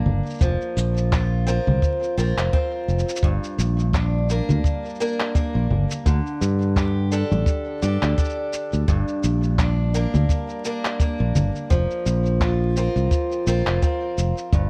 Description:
folktronica; 85 BPM; 4/4; swing 56% on 16ths; G minor; A4 = 441 Hz
picked acoustic archtop guitar; arpeggios; 0.0-14.7 s; G2 to Bb4; -28 LUFS; equal; tape echo
fingered electric bass; bass; 0.1-14.7 s; F1 to G2; -23 LUFS; equal
electronic congas, shaker and handclaps; drums; 0.1-14.7 s; -29 LUFS; equal
kick drum; drums; 0.4-14.7 s; -24 LUFS; equal
little or no reverb; dry, close 1970s-style studio recording, vinyl crackle; -22 LUFS; mono
0.0-14.7 A section
0.4 Fsus4; 3.2 Gm; 6.1 Dsus4; 8.9 Gm; 11.7 Fsus4
| 0.41 1.12 1.82 2.53 | 3.23 3.94 4.65 5.35 | 6.06 6.76 7.47 8.18 | 8.88 9.59 10.29 11.00 | 11.71 12.41 13.12 13.82 | 14.53

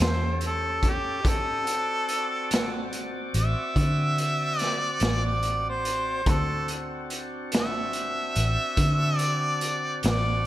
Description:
slow blues; 48 BPM (dotted quarters); 12/8; straight; A4 = 440 Hz
warm harmonica; melody; 0.0-10.5 s; G4 to E5; -28 LUFS; equal; overdrive, slapback echo
overdriven tonewheel organ; sustained chords; 0.0-10.5 s; C4 to D#5; -34 LUFS; left 1 dB; slow rotary speaker
vintage muted fingered electric bass; bass; 0.0-10.5 s; A1 to D3; -27 LUFS; equal
raw garage drum kit; drums; 0.0-10.2 s; hi-hat, kick drum, snare drum; -28 LUFS; equal
light reverb, studio reverb; -24 LUFS; side -14 dB against mid
0.0-10.5 A section
harmonica solo 0.0-10.5
0.0 A7; 1.2 D7
| 1.25 2.50 3.76 5.02 | 6.27 7.53 8.78 10.04

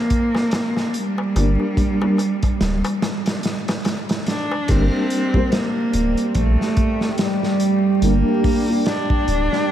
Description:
trip hop; 72 BPM; 4/4; swing 58% on 16ths; G minor; A4 = 440 Hz
clear cello; melody; 0.0-9.7 s; G3 to D4; -21 LUFS; right 1 dB; dub echo
crunchy breakbeat drum kit; drums; 0.1-9.7 s; crash cymbal, hi-hat, kick drum, snare drum; -23 LUFS; equal
darbuka; percussion; 0.3-4.7 s; -35 LUFS; left 3 dB
dark upright piano; accompaniment; 1.4-8.8 s; G3 to D4; -26 LUFS; left 1 dB; tremolo
soft dub sub bass; bass; 1.4-9.5 s; D1 to Bb1; -19 LUFS; equal
deep dark ambient pad; sustained chords; 5.2-9.7 s; G3 to G5; -25 LUFS; right 2 dB; chorus, built-in reverb
moderate huge ambient reverb, RT60 7.8 s; dreamy mix soaked in reverb, vinyl crackle; -17 LUFS; side -11 dB against mid
0.0-4.7 A section; 4.7-9.7 B section
break 3.0-4.7
0.0 Gm
0.52 | 1.35 2.19 3.02 3.85 | 4.69 5.52 6.36 7.19 | 8.02 8.86 9.69

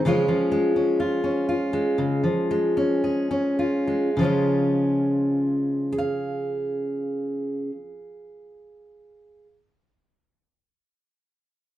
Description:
folk; 51-65 BPM; 4/4; straight; Db major; A4 = 441 Hz
fingerpicked steel-string acoustic guitar; accompaniment; 0.0-9.5 s; Db3 to F5; -21 LUFS; equal
wet studio reverb, RT60 0.5 s; heard from further back in the room; -21 LUFS; side -13 dB against mid
0.0-4.2 A section; 4.2-8.9 B section
slowing down 0.0-4.2
0.0 Db
| 0.05 0.99 1.98 3.03 | 4.16 5.34 6.51 7.68

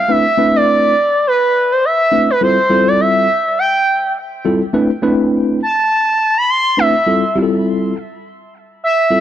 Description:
funk; 103 BPM; 4/4; swing 56% on 16ths; C major; A4 = 439 Hz
expressive portamento lead; melody; 0.0-9.2 s; B4 to C6; -13 LUFS; right 1 dB; chorus
mellow tine electric piano; accompaniment; 0.1-9.2 s; G3 to B4; -15 LUFS; left 1 dB; medium stereo tremolo
light reverb; -12 LUFS; side -11 dB against mid
0.0-9.2 A section
0.1 Cmaj13; 2.4 Fmaj9; 4.7 Cmaj13; 7.1 Fmaj9
| 0.08 0.67 1.25 1.83 | 2.41 3.00 3.58 4.16 | 4.74 5.33 5.91 6.49 | 7.07 7.66 8.24 8.82

